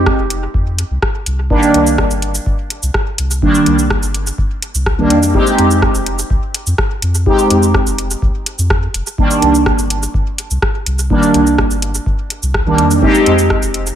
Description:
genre	dub techno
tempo	125 BPM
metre	4/4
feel	straight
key	C minor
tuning	A4 = 440 Hz
part	soft dub sub bass	bass	0.0-13.9 s	F1 to F2	-17 LUFS	equal	sidechain pumping
part	deep house drum kit	drums	0.1-14.0 s	cabasa, hi-hat, rim click	-20 LUFS	equal	overdrive, dub echo
part	electronic kick drum	drums	0.1-13.6 s	none	-17 LUFS	equal	none
part	resonant sweep polysynth	stabs	1.5-13.3 s	Eb3 to G4	-13 LUFS	right 1 dB	chorus, phaser, sidechain pumping, dub echo
room	moderate plate reverb, RT60 1.0 s, digital ambience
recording	dreamy mix soaked in reverb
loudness	-12 LUFS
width	side -10 dB against mid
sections	0.0-14.0 A section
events	none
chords	0.0 F5; 1.5 Cm7; 5.3 Fm7; 9.2 Cm7; 13.0 Fm7

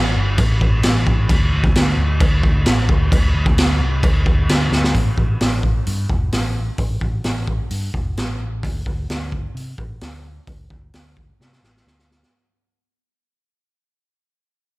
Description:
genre	rock, shoegaze and dream pop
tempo	130 BPM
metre	4/4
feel	straight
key	unclear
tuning	A4 = 440 Hz
part	picked electric bass	bass	0.0-12.2 s	E1 to C3	-20 LUFS	equal	none
part	raw garage drum kit	drums	0.4-12.3 s	crash cymbal, hi-hat, kick drum, snare drum	-18 LUFS	equal	none
room	little or no reverb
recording	none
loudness	-16 LUFS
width	side -21 dB against mid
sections	0.0-4.9 A section; 4.9-12.3 B section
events	drum fill 4.7, 11.4-12.3; fade-out 4.9-12.3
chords	none

